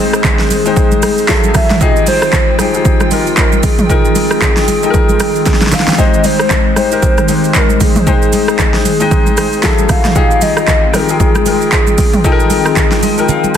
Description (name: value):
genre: amapiano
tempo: 115 BPM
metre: 4/4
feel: swing 58% on 16ths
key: unclear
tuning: A4 = 444 Hz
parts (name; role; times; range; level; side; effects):
- hollow clarinet-like synth lead; melody; 0.0-13.6 s; Ab4 to F5; -16 LUFS; equal; chorus, digital delay
- clear grand piano; accompaniment; 0.0-13.6 s; F3 to G5; -17 LUFS; left 6 dB; none
- hollow soft pad; sustained chords; 0.0-13.6 s; Eb3 to G5; -19 LUFS; equal; ensemble chorus, sidechain pumping
- deep house drum kit; drums; 0.1-13.6 s; handclaps, hi-hat, kick drum, rim click, shaker, snare drum, toms; -12 LUFS; equal; overdrive
- congas; percussion; 0.2-13.6 s; none; -20 LUFS; right 2 dB; none
room: light reverb, digital ambience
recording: dense, heavily limited modern master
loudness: -9 LUFS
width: side -9 dB against mid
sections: 0.0-13.6 A section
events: drum fill 5.5-6.0; grand piano fill 12.8-13.6; kick muted 13.3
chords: 0.0 Abmaj7; 1.3 Gbm9; 1.8 Fm9; 6.0 Abmaj7; 9.6 Gbm9; 10.2 Fm9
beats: 0.24 0.77 1.29 | 1.81 2.33 2.85 3.37 | 3.90 4.42 4.94 5.46 | 5.98 6.50 7.03 7.55 | 8.07 8.59 9.11 9.63 | 10.16 10.68 11.20 11.72 | 12.24 12.77 13.29